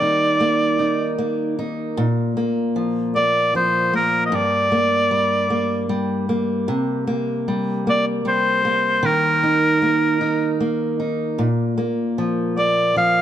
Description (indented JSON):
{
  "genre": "pop",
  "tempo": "51 BPM (dotted quarters)",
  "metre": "6/8",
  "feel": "straight",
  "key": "Eb major",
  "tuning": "A4 = 440 Hz",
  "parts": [
    { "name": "clear oboe", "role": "melody", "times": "0.0-13.2 s", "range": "Bb4 to F5", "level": "-18 LUFS", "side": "equal", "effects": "none" },
    { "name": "fingerpicked steel-string acoustic guitar", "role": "accompaniment", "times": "0.0-13.2 s", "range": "G2 to Eb4", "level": "-20 LUFS", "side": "right 1 dB", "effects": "none" }
  ],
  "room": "light reverb",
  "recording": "none",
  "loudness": "-17 LUFS",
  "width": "side -10 dB against mid",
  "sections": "0.0-13.2 A section",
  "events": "none",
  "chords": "0.0 Eb5; 2.0 Bb5; 4.3 Gm; 6.7 C5; 9.0 Eb5; 11.4 Bb5",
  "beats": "0.79 | 1.97 3.15 | 4.32 5.50 | 6.68 7.86 | 9.04 10.21 | 11.39 12.57"
}